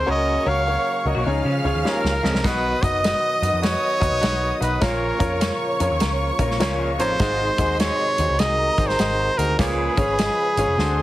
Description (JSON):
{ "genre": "uptempo 1960s-style soul", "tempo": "101 BPM", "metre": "4/4", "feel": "swing 65% on 8ths", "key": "unclear", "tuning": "A4 = 440 Hz", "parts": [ { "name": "bright trumpet", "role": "melody", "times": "0.0-11.0 s", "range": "G#4 to E#5", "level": "-22 LUFS", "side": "equal", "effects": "none" }, { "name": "warm symphonic violin section", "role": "second line", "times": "0.0-11.0 s", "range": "A#4 to E#6", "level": "-28 LUFS", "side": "equal", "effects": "none" }, { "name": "tonewheel organ", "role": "sustained chords", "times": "0.0-11.0 s", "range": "B#2 to A#4", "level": "-33 LUFS", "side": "right 2 dB", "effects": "none" }, { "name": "bright grand piano", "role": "accompaniment", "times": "0.1-11.0 s", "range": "G#2 to D#5", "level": "-26 LUFS", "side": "left 2 dB", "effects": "none" }, { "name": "warm baritone saxophone", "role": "riff", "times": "0.1-10.1 s", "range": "D#2 to B2", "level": "-28 LUFS", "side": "right 2 dB", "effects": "none" }, { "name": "vintage muted picked electric bass", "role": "bass", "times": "0.1-11.0 s", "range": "E#1 to C#3", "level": "-25 LUFS", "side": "equal", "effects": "none" }, { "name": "electric guitar through a small old amp", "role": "riff", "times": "1.1-2.3, 6.4-7.4 s", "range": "C#3 to F#4", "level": "-31 LUFS", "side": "left 5 dB", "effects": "lush chorus" }, { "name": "warm soul drum kit", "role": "drums", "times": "1.9-11.0 s", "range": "hi-hat, kick drum, snare drum", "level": "-24 LUFS", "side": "equal", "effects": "none" } ], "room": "moderate small room reverb, RT60 0.5 s", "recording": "heavily compressed radio sound, multiband compression", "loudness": "-18 LUFS", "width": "side -15 dB against mid", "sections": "0.0-11.0 A section", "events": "drum fill 1.9-2.4, 10.8", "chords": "0.1 F#/C#; 1.3 C#; 2.4 B; 4.8 A#m; 7.2 G#7; 9.6 C#" }